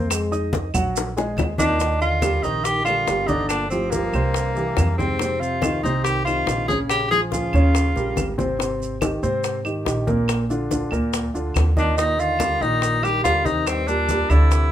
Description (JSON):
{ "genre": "Afro-Cuban jazz", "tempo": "142 BPM", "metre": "4/4", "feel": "straight", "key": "Eb major", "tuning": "A4 = 440 Hz", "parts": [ { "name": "dark trombone", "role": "second line", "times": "0.0-8.3, 11.8-14.7 s", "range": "G2 to Bb3", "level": "-31 LUFS", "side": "left 2 dB", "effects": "none" }, { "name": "warm grand piano", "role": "accompaniment", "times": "0.0-14.7 s", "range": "Bb2 to Eb6", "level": "-24 LUFS", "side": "right 1 dB", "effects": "none" }, { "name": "upright bass", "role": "bass", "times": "0.0-14.7 s", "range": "G1 to Ab2", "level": "-24 LUFS", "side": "equal", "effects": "none" }, { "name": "bongos", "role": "percussion", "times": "0.1-14.7 s", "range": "none", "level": "-30 LUFS", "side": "left 8 dB", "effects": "none" }, { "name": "claves", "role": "percussion", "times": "0.1-14.5 s", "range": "none", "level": "-33 LUFS", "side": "right 3 dB", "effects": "none" }, { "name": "congas", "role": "percussion", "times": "0.1-14.7 s", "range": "none", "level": "-29 LUFS", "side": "left 1 dB", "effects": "none" }, { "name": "maracas", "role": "percussion", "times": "0.1-14.7 s", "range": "none", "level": "-33 LUFS", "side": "right 6 dB", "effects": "none" }, { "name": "warm tenor saxophone", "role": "melody", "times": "1.6-8.3, 11.8-14.7 s", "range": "Bb3 to Ab4", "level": "-22 LUFS", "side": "left 1 dB", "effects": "none" } ], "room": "light reverb", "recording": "minimal, uncompressed stereo recording", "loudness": "-19 LUFS", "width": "side -11 dB against mid", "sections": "0.0-1.8 A section; 1.8-14.7 B section", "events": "trombone solo 0.0-1.8; drum fill 1.0-1.8, 8.2-8.6", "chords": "0.1 Fm7; 1.0 Ebmadd11/Bb; 1.8 Ebmaj7; 3.5 Gm7; 4.4 C7; 5.2 F5; 6.9 Bbm7; 7.7 Eb7; 8.6 Abmaj7; 10.3 Bb; 12.0 Ebmaj7" }